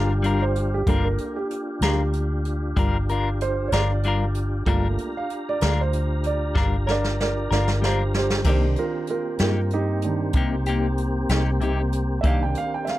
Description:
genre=slow blues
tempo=63 BPM (dotted quarters)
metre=12/8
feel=straight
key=G minor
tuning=A4 = 441 Hz
part: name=clean electric guitar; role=accompaniment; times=0.0-12.4 s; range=C3 to Bb4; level=-27 LUFS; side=left 4 dB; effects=harmonic tremolo, plate reverb
part: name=warm grand piano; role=accompaniment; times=0.0-13.0 s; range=Eb3 to G5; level=-27 LUFS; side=right 4 dB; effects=plate reverb
part: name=tonewheel organ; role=sustained chords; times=0.0-13.0 s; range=G3 to Bb5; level=-30 LUFS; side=left 1 dB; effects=chorus vibrato, stopped rotary speaker, plate reverb
part: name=vintage muted fingered electric bass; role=bass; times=0.0-12.5 s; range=G1 to G2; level=-24 LUFS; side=equal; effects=none
part: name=jazz brush drum kit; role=drums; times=0.2-13.0 s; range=crash cymbal, hi-hat, kick drum, snare drum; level=-26 LUFS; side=equal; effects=none
room=light reverb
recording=dark, warm production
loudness=-20 LUFS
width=side -15 dB against mid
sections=0.0-13.0 A section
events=grand piano solo 0.0-13.0; drum fill 6.6-8.5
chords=0.0 Gm7; 8.5 Cm7

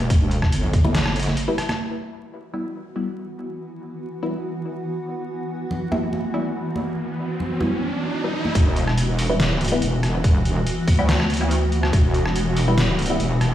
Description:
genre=deep dubstep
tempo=142 BPM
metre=4/4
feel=half-time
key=E minor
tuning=A4 = 438 Hz
part: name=wobble bass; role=bass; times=0.0-1.4, 8.6-13.5 s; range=E1 to D2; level=-21 LUFS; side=equal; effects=chorus
part: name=trip hop sampler-style drum kit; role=drums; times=0.0-1.8, 8.6-13.5 s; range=hi-hat, rim click, snare drum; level=-25 LUFS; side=equal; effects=low-pass filter on hats, studio reverb, low-pass filter on snare
part: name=congas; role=percussion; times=0.0-1.8, 5.7-8.5 s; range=none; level=-29 LUFS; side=right 1 dB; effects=dub echo
part: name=electronic kick drum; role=drums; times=0.1-0.8, 8.6-12.0 s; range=none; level=-18 LUFS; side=equal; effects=studio reverb
part: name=filtered dub chord stab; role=stabs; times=0.8-13.2 s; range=G3 to E4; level=-28 LUFS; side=left 1 dB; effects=phaser, dub echo
part: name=granular cloud pad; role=sustained chords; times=2.6-13.5 s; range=E3 to F#4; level=-27 LUFS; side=equal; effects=built-in reverb
part: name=riser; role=sound effects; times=6.2-8.6 s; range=none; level=-30 LUFS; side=right 1 dB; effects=none
room=moderate echo chamber reverb, RT60 1.6 s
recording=played on a big sound system in a bare room, large studio reverb, vinyl crackle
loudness=-19 LUFS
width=side -12 dB against mid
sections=0.0-1.8 A section; 1.8-8.6 B section; 8.6-13.5 C section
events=break 1.4-1.8; drum fill 1.6; filter sweep on drum 1.8-8.6; riser 6.2-8.6; drop 8.6-13.5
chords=0.0 Em

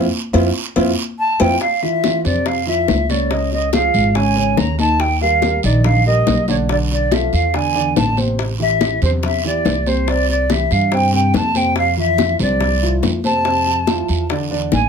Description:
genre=Afro-Cuban jazz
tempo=142 BPM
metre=4/4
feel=straight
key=F major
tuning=A4 = 440 Hz
part: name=dark upright piano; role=accompaniment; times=0.0-14.9 s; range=C3 to Eb5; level=-21 LUFS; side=right 1 dB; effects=none
part: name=upright bass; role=bass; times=0.0-14.9 s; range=Ab1 to G2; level=-19 LUFS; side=equal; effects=none
part: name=congas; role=percussion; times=0.3-14.9 s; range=none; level=-24 LUFS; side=left 3 dB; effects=none
part: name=cowbell and bongos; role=percussion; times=0.3-14.9 s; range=none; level=-23 LUFS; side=left 8 dB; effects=none
part: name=guiro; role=percussion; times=0.3-14.9 s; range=none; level=-29 LUFS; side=right 7 dB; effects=none
part: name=mellow jazz flute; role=melody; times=1.2-14.9 s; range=C5 to Bb5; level=-18 LUFS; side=equal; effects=none
room=light reverb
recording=close, detailed microphones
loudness=-14 LUFS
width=side -6 dB against mid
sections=0.0-1.6 A section; 1.6-14.9 B section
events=band accent 0.0-1.6; upright piano solo 0.0-1.6; drum fill 1.2-1.6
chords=0.0 Fmaj7(no3); 1.6 F5; 3.3 Dbadd9; 5.0 Ebmaj9; 6.7 Bm7b5; 7.5 E7; 8.4 Am7; 10.1 C; 11.8 F6; 14.3 Asus4

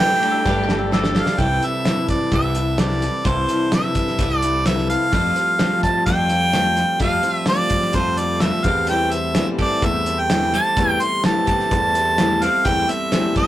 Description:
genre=folk rock and heartland rock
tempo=128 BPM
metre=4/4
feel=straight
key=unclear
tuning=A4 = 440 Hz
part: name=clear harmonica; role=melody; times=0.0-13.5 s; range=C5 to C6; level=-20 LUFS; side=equal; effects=none
part: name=mandolin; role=second line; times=0.0-1.3 s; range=G4 to B4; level=-27 LUFS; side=left 3 dB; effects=none
part: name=picked steel-string acoustic guitar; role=accompaniment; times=0.0-13.5 s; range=E2 to C5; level=-25 LUFS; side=left 3 dB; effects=none
part: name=tonewheel organ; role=sustained chords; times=0.0-13.5 s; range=A3 to A4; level=-32 LUFS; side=right 1 dB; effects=none
part: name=twelve-string electric guitar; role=riff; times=0.0-13.5 s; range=E2 to A4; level=-26 LUFS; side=right 3 dB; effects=none
part: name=cloth-damped thuddy drum kit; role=drums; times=0.2-13.5 s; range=hi-hat, kick drum, ride cymbal, snare drum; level=-22 LUFS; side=equal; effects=none
part: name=picked electric bass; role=bass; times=0.5-12.8 s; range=G1 to F2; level=-25 LUFS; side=equal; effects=none
room=moderate studio ambience, RT60 0.5 s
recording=rough rehearsal-room recording, tube saturation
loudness=-16 LUFS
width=side -14 dB against mid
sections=0.0-1.4 A section; 1.4-13.5 B section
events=drum fill 0.5-1.4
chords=0.0 Gsus2; 1.4 C6; 5.1 Fadd9; 8.7 C6/E

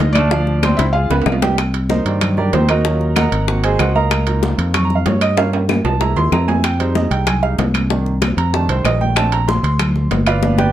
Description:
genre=latin, salsa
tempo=190 BPM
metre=4/4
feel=straight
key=C minor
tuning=A4 = 437 Hz
part: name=felt-muted upright piano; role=melody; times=0.0-1.4 s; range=D4 to F5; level=-20 LUFS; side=left 1 dB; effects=none
part: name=clear baby grand piano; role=accompaniment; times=0.0-10.7 s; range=Eb3 to Db6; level=-19 LUFS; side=right 4 dB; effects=none
part: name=fingered electric bass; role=bass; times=0.0-10.7 s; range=G1 to G2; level=-17 LUFS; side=equal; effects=none
part: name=bongos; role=percussion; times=0.0-10.7 s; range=none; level=-24 LUFS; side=left 8 dB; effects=none
part: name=timbales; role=percussion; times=0.0-10.4 s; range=none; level=-23 LUFS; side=right 5 dB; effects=none
part: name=claves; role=percussion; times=0.1-10.4 s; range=none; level=-26 LUFS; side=left 6 dB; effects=none
part: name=congas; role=percussion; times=0.2-10.7 s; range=none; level=-22 LUFS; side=left 1 dB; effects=none
room=light reverb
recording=dark, warm production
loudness=-14 LUFS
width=side -12 dB against mid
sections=0.0-1.6 A section; 1.6-10.7 B section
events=drum fill 0.8-1.6, 5.4-6.6, 10.4; grand piano solo 1.6-10.7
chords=0.3 Dm7; 0.9 Db7#11; 1.6 Cm9; 2.8 Ebm7; 3.5 Ab9; 4.1 Db69; 5.4 Gm7b5; 6.0 C7alt; 6.6 Fm9; 7.9 Cm7; 8.5 F13; 9.2 Bbmaj9

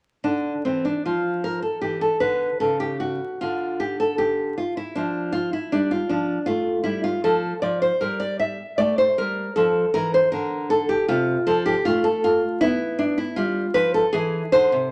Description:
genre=classical, baroque-style dance for nylon-string guitar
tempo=78 BPM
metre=4/4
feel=rubato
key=unclear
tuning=A4 = 441 Hz
part: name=nylon-string guitar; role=solo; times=0.2-14.9 s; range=C3 to E5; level=-22 LUFS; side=equal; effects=none
room=moderate large studio reverb, RT60 1.2 s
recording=vinyl crackle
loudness=-23 LUFS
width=mono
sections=0.2-14.9 A section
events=none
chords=0.2 Dm; 1.8 C#m7b5; 3.4 Dm; 6.5 F; 8.0 Gm69; 9.6 F; 12.6 Fmaj9#11; 14.1 Cadd9

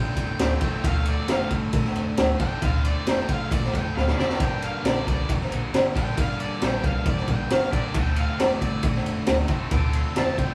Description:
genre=blues rock power trio and southern rock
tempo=135 BPM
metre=4/4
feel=straight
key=D minor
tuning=A4 = 438 Hz
part: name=octave-fuzz lead guitar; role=melody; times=0.0-10.5 s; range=D5 to D6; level=-36 LUFS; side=equal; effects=distortion
part: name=sludgy distorted guitar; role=riff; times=0.0-10.5 s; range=D2 to G4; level=-32 LUFS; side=equal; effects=overdrive
part: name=vintage muted fingered electric bass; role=bass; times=0.0-10.5 s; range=D1 to E2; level=-31 LUFS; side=equal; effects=none
part: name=raw garage drum kit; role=drums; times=0.2-10.5 s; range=kick drum, ride cymbal, snare drum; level=-26 LUFS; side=equal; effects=none
room=light reverb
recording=band playing live in one room, small room ambience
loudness=-24 LUFS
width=mono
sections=0.0-10.5 A section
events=lead electric guitar solo 0.0-10.5; drum fill 4.0-4.4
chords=0.0 Dm7; 4.4 Gm; 8.0 Dm7

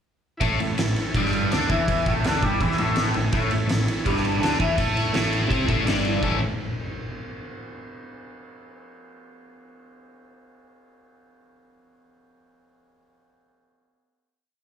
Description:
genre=garage rock duo or trio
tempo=165 BPM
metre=4/4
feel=straight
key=A major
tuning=A4 = 442 Hz
part: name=combo organ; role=sustained chords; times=0.4-6.4 s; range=E4 to G#5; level=-32 LUFS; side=right 1 dB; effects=none
part: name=raw garage guitar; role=riff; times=0.4-6.4 s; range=G2 to A4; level=-23 LUFS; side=left 1 dB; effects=overdrive, phaser, slapback echo
part: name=fuzz fingered electric bass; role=bass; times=0.4-6.4 s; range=G1 to A2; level=-28 LUFS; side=equal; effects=overdrive
part: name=oversized low-tuned drum kit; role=drums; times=0.4-6.3 s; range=crash cymbal, kick drum, ride cymbal, snare drum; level=-27 LUFS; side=equal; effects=none
room=light reverb, small room reverb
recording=live gig heard through the venue's PA, club reverb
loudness=-20 LUFS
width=side -8 dB against mid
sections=0.4-6.2 riff; 6.2-7.7 final chord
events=transistor combo organ fill 2.6-3.3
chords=0.4 A

